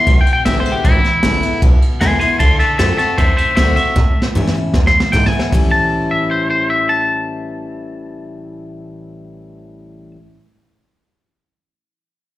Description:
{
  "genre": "rockabilly",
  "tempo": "154 BPM",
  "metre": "4/4",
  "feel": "straight",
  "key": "A mixolydian",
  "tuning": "A4 = 438 Hz",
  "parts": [
    { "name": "twangy electric guitar", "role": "melody", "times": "0.0-10.1 s", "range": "E4 to C6", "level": "-16 LUFS", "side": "left 1 dB", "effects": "slapback echo, analog delay" },
    { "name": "picked steel-string acoustic guitar", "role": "accompaniment", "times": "0.0-10.2 s", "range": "E2 to F#4", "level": "-22 LUFS", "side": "left 2 dB", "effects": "slapback echo" },
    { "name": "upright bass", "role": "bass", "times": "0.1-10.1 s", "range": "G#1 to A2", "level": "-18 LUFS", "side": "equal", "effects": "none" },
    { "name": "jazz brush drum kit", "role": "drums", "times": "0.1-5.6 s", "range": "hi-hat, kick drum, ride cymbal, snare drum, toms", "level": "-16 LUFS", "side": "equal", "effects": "none" }
  ],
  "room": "small room ambience",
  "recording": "live gig heard through the venue's PA, club reverb",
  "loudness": "-12 LUFS",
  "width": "side -15 dB against mid",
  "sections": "0.0-5.5 A section; 5.5-8.7 B section",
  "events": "drum fill 4.0-5.5",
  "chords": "0.0 E7; 2.4 D7; 4.0 A7; 4.7 E7; 5.5 A7"
}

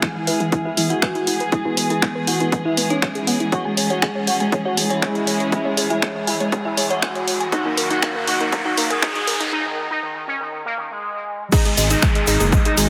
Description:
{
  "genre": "melodic techno",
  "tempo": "120 BPM",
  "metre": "4/4",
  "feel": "straight",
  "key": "G# minor",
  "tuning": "A4 = 438 Hz",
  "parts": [
    { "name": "resonant sweep polysynth", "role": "melody", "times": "0.0-12.9 s", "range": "D#3 to G#4", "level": "-27 LUFS", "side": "equal", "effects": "chorus, phaser, sidechain pumping, digital delay" },
    { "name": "dark detuned synth bell", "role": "second line", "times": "0.0-12.9 s", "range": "E4 to G#5", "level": "-30 LUFS", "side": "equal", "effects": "chorus, sidechain pumping, low-pass filter, digital delay" },
    { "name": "rich studio string section", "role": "sustained chords", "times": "0.0-12.9 s", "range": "B2 to G#4", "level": "-29 LUFS", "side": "equal", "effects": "sidechain pumping, low-pass filter" },
    { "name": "woody wave-folded pluck", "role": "arpeggios", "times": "0.0-12.8 s", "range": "B3 to G#5", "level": "-28 LUFS", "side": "equal", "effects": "chorus, sidechain pumping, digital delay" },
    { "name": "electronic kick drum", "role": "drums", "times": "0.0-12.6 s", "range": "none", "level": "-22 LUFS", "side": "equal", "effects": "overdrive, high-pass filter on kick" },
    { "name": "punchy analog drum machine", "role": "drums", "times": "0.0-12.9 s", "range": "crash cymbal, finger snaps, hi-hat", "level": "-25 LUFS", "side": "equal", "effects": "overdrive" },
    { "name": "brassy analog pad", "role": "stabs", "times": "0.8-8.8, 12.8 s", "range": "F#3 to E4", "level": "-30 LUFS", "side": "equal", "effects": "chorus, sidechain pumping, digital delay" },
    { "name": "riser and downlifter", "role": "sound effects", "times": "5.9-12.9 s", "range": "none", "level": "-30 LUFS", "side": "equal", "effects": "none" },
    { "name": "tube shaker", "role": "percussion", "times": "11.5-12.9 s", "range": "none", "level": "-29 LUFS", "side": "equal", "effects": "none" },
    { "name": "swelling detuned saw bass", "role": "bass", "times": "11.8-12.9 s", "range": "F#1 to G#1", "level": "-22 LUFS", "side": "equal", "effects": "sidechain pumping" }
  ],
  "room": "moderate huge ambient reverb, RT60 4.2 s",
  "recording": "high-pass filter",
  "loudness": "-20 LUFS",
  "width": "mono",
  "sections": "0.0-11.5 A section; 11.5-12.9 B section",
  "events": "build-up 0.0-11.5; filter sweep on synth pluck 0.0-11.5; filter sweep on analog polysynth 0.0-11.5; filter sweep on string section 0.0-11.5; riser 5.9-9.5; break 9.5-11.5; drop 11.5-12.9",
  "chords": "0.0 E; 3.5 C#m; 7.5 D#m; 11.5 G#m"
}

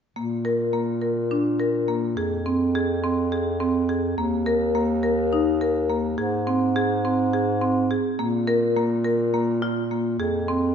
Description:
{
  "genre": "contemporary instrumental, contemporary",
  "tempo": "210 BPM (eighths)",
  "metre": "7/8",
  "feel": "straight",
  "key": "unclear",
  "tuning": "A4 = 440 Hz",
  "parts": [
    { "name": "marimba with hard mallets", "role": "arpeggios", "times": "0.2-10.7 s", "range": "Bb3 to Bb4", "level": "-22 LUFS", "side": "equal", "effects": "none" },
    { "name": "warm bass clarinet", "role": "bass", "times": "0.2-10.7 s", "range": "Eb2 to Bb2", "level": "-26 LUFS", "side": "equal", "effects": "none" }
  ],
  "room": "wet scoring stage reverb, RT60 1.5 s",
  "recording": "nothing above 7.6 kHz",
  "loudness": "-21 LUFS",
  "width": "side -7 dB against mid",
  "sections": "0.2-8.2 A section; 8.2-10.7 B section",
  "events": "none",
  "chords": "0.2 N.C.; 2.2 Fm; 4.2 Eb5; 6.2 Ab; 8.2 Bb5; 10.2 Fm"
}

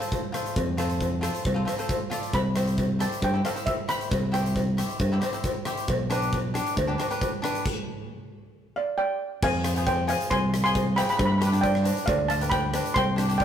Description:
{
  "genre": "calypso",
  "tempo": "135 BPM",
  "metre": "4/4",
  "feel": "straight",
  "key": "unclear",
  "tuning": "A4 = 438 Hz",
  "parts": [
    { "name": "cavaquinho", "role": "accompaniment", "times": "0.0-13.4 s", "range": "D4 to D5", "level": "-32 LUFS", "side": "left 2 dB", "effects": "none" },
    { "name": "huge arena drum kit", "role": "drums", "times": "0.0-13.4 s", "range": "crash cymbal, hi-hat, kick drum, rim click", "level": "-30 LUFS", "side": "equal", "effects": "none" },
    { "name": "cowbell", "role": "percussion", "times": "0.1-13.4 s", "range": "none", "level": "-33 LUFS", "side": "equal", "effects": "none" },
    { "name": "overdriven fingered electric bass", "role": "bass", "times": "0.6-13.4 s", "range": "B1 to G2", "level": "-26 LUFS", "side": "equal", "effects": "none" },
    { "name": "steel pan", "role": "melody", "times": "2.3-4.7, 8.8-13.4 s", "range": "C5 to C6", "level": "-27 LUFS", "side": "right 1 dB", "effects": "none" }
  ],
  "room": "moderate stone room reverb, RT60 1.2 s",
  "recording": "rough rehearsal-room recording, warm saturation",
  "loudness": "-23 LUFS",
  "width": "side -9 dB against mid",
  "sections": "0.0-9.4 A section; 9.4-13.4 B section",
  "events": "stop 7.7-9.4",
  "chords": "0.0 F; 2.3 Cmaj7; 5.9 G/B; 9.4 Fm; 11.2 G7"
}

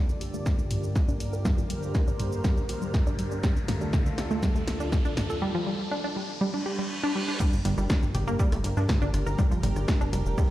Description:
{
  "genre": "melodic techno",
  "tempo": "121 BPM",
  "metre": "4/4",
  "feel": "straight",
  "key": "G minor",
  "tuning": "A4 = 440 Hz",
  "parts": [
    { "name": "warm analog pad", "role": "sustained chords", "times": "0.0-10.5 s", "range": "D2 to D5", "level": "-35 LUFS", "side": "equal", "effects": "chorus, sidechain pumping" },
    { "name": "riser and reverse cymbal", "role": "sound effects", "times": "1.6-7.4 s", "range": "none", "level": "-39 LUFS", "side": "right 1 dB", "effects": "none" },
    { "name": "granular cloud pad", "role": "texture", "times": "0.1-10.5 s", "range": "F4 to Bb5", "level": "-39 LUFS", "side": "equal", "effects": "built-in reverb, sidechain pumping" },
    { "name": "punchy analog drum machine", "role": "drums", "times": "0.1-10.5 s", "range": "crash cymbal, hi-hat, rim click, shaker, snare drum, toms", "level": "-33 LUFS", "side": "equal", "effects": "overdrive, sidechain pumping on perc, sidechain pumping on hats, sidechain pumping on toms, sidechain pumping on cymbals" },
    { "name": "wide unison pluck", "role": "arpeggios", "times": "0.2-10.5 s", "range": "D3 to Bb4", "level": "-31 LUFS", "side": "equal", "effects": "sidechain pumping, dub echo" },
    { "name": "electronic kick drum", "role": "drums", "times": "0.5-10.5 s", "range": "none", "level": "-26 LUFS", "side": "equal", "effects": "none" },
    { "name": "vintage drum kit", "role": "drums", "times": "7.4-10.5 s", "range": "hi-hat, snare drum", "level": "-47 LUFS", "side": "equal", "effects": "none" },
    { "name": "plucky analog bass", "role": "bass", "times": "7.5-10.3 s", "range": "F1 to G2", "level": "-27 LUFS", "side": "equal", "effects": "sidechain pumping" }
  ],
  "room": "light reverb",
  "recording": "played on a big sound system in a bare room, stone room reverb",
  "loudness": "-24 LUFS",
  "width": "side -15 dB against mid",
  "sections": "0.0-7.4 A section; 7.4-10.5 B section",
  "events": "build-up 0.0-7.4; drum fill 0.0-5.4; filter sweep on synth arpeggio sound 0.0-7.4; riser 1.6-7.4; break 5.4-7.4; reverse cymbal 6.4-7.4; drop 7.4-10.5",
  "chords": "0.0 Gm; 3.4 Dm; 7.4 Gm"
}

